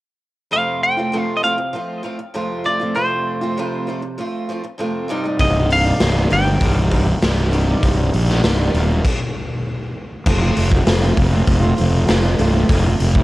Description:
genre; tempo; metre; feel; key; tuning
quiet-loud alternative rock; 99 BPM; 4/4; straight; unclear; A4 = 441 Hz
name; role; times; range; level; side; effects
semi-hollow electric guitar; melody; 0.5-9.6 s; C5 to G5; -20 LUFS; equal; warbly pitch drift
picked steel-string acoustic guitar; arpeggios; 0.5-13.2 s; C2 to F4; -22 LUFS; right 1 dB; cassette tape
fuzz fingered electric bass; bass; 5.4-13.2 s; C1 to Bb1; -16 LUFS; equal; overdrive
raw garage drum kit; drums; 5.4-13.2 s; crash cymbal, hi-hat, kick drum, snare drum; -19 LUFS; equal; cassette tape
room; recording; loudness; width
studio reverb; home recording on cassette; -15 LUFS; side -18 dB against mid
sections
0.5-10.3 A section; 10.3-13.2 B section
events
stop 9.1-10.3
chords
0.5 F; 5.1 Cm; 10.3 F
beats
| 0.53 1.14 1.74 2.35 | 2.96 3.57 4.18 4.79 | 5.40 6.01 6.62 7.23 | 7.84 8.45 9.05 9.66 | 10.27 10.88 11.48 12.09 | 12.70

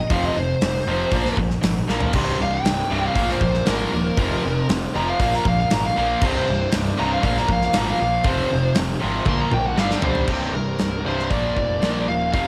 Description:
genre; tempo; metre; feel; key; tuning
hard rock; 118 BPM; 4/4; straight; unclear; A4 = 440 Hz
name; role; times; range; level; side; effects
biting lead guitar; melody; 0.0-12.5 s; G4 to C6; -26 LUFS; equal; overdrive, cassette tape, analog delay
distorted electric guitar; riff; 0.0-12.5 s; C2 to Bb3; -28 LUFS; equal; overdrive
tight distorted guitar; riff; 0.0-12.5 s; C2 to Bb3; -31 LUFS; equal; none
fuzz picked electric bass; bass; 0.0-12.5 s; C1 to B1; -29 LUFS; equal; overdrive
gated 80s drum kit; drums; 0.1-12.5 s; crash cymbal, hi-hat, kick drum, snare drum, toms; -26 LUFS; equal; cassette tape
distorted electric guitar; riff; 2.1-12.5 s; C2 to Bb3; -31 LUFS; equal; overdrive
room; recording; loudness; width
studio reverb; home recording on cassette; -21 LUFS; mono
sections
0.0-10.3 A section; 10.3-12.5 B section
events
lead electric guitar solo 0.0-10.3; drum fill 1.9, 9.3-10.3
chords
0.1 F5; 1.1 Bb5; 2.1 C5; 3.2 Bb5; 4.2 F5; 5.2 Bb5; 6.2 C5; 7.2 Bb5; 8.3 Fm; 9.3 Bb5; 9.8 G; 10.3 C5; 11.3 Bb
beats
| 0.11 0.62 1.13 1.64 | 2.15 2.66 3.17 3.68 | 4.18 4.69 5.20 5.71 | 6.22 6.73 7.24 7.74 | 8.25 8.76 9.27 9.78 | 10.29 10.81 11.32 11.83 | 12.35

